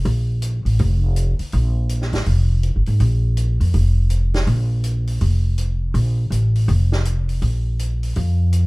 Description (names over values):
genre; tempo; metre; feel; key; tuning
modal jazz; 163 BPM; 4/4; swing 64% on 8ths; unclear; A4 = 439 Hz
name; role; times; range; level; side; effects
upright bass; bass; 0.1-8.7 s; F1 to F2; -17 LUFS; equal; none
vintage drum kit; drums; 0.1-8.6 s; hi-hat, snare drum; -32 LUFS; right 1 dB; none
room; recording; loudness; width
little or no reverb; none; -17 LUFS; side -24 dB against mid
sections
0.0-8.7 A section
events
none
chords
none